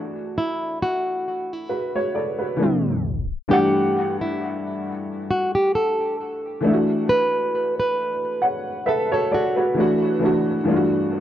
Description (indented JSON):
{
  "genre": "hip hop",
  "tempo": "67 BPM",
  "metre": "4/4",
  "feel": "swing 55% on 16ths",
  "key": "D major",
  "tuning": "A4 = 440 Hz",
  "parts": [
    { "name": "dark upright piano", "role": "accompaniment", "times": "0.0-11.2 s", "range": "G2 to F#5", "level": "-22 LUFS", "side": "equal", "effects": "cassette tape, low-pass filter, dub echo" },
    { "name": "flamenco guitar", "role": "melody", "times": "0.4-10.0 s", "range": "E4 to B4", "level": "-22 LUFS", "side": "equal", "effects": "low-pass filter, dub echo" }
  ],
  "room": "moderate spring reverb, RT60 2.0 s",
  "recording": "echo-heavy mix, cassette tape, tape stop, nothing above 10.4 kHz",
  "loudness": "-20 LUFS",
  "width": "side -11 dB against mid",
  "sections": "0.0-3.5 A section; 3.5-11.2 B section",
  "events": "tape stop 2.6-3.5",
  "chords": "0.0 Dadd9; 3.5 Gsus2; 6.6 Dadd9; 10.7 Gsus2"
}